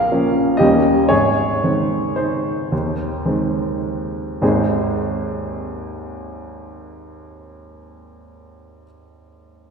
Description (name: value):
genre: classical, piano waltz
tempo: 100-126 BPM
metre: 3/4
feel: rubato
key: Ab major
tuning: A4 = 440 Hz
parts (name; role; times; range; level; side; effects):
- clear upright piano; solo; 0.0-9.7 s; Ab1 to F5; -17 LUFS; equal; none
room: wet concert hall reverb, RT60 2.2 s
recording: recorded in a church or concert hall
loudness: -16 LUFS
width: side -5 dB against mid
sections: 0.0-4.4 A section; 4.4-7.8 B section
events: slowing down 0.4-4.4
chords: 0.0 Bbm; 0.6 Eb7; 1.1 Ab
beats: 0.11 0.60 | 1.11 1.64 2.19 | 2.72 3.25 3.83 | 4.41 4.97 5.55 | 6.12 6.68 7.26